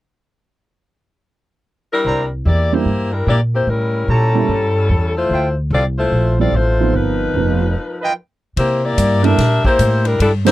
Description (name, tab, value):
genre	jazz, big band swing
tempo	147 BPM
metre	4/4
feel	swing 64% on 8ths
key	C mixolydian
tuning	A4 = 441 Hz
part	warm saxophone section	melody	1.9-10.5 s	F3 to E5	-18 LUFS	left 2 dB	none
part	upright bass	bass	2.0-10.5 s	F1 to C3	-17 LUFS	equal	none
part	clear trumpet section	stabs	2.1-5.5, 8.0-8.1 s	E4 to Bb5	-20 LUFS	right 2 dB	none
part	warm grand piano	accompaniment	2.7-10.5 s	F3 to A4	-18 LUFS	right 8 dB	none
part	swinging big-band drum kit	drums	8.6-10.5 s	hi-hat, kick drum, ride cymbal, snare drum	-22 LUFS	equal	none
room	little or no reverb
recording	dry, close 1970s-style studio recording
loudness	-14 LUFS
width	side -16 dB against mid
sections	0.4-2.0 A section; 2.0-8.6 B section; 8.6-10.5 C section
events	break 7.8-8.6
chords	0.4 N.C.; 2.0 C9; 3.7 A7b9; 5.3 Dm11; 6.9 G7alt; 8.6 C13